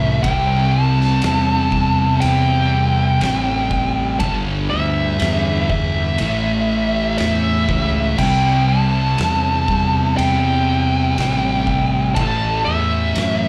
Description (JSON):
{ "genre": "stoner and doom metal", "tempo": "60 BPM", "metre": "4/4", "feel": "straight", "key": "unclear", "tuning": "A4 = 440 Hz", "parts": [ { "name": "fuzz lead guitar", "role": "melody", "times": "0.0-13.5 s", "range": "E5 to A5", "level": "-23 LUFS", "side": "equal", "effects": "wah, distortion, slapback echo" }, { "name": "thick fuzz guitar", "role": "riff", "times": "0.0-13.5 s", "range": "G2 to C4", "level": "-23 LUFS", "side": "equal", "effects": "distortion" }, { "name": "thick fuzz guitar", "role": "riff", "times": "0.0-13.5 s", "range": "G2 to C4", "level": "-27 LUFS", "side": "equal", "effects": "distortion, slapback echo" }, { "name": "fuzz fingered electric bass", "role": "bass", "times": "0.0-13.5 s", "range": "G1 to F#2", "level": "-23 LUFS", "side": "equal", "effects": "overdrive" }, { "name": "oversized low-tuned drum kit", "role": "drums", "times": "0.2-13.4 s", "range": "crash cymbal, kick drum, ride cymbal, snare drum", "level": "-29 LUFS", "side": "equal", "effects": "none" } ], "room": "light reverb", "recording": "live gig heard through the venue's PA, club reverb", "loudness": "-17 LUFS", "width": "mono", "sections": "0.0-13.5 A section", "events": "none", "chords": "0.2 C; 4.2 G5; 6.2 A; 8.2 C; 12.2 A5" }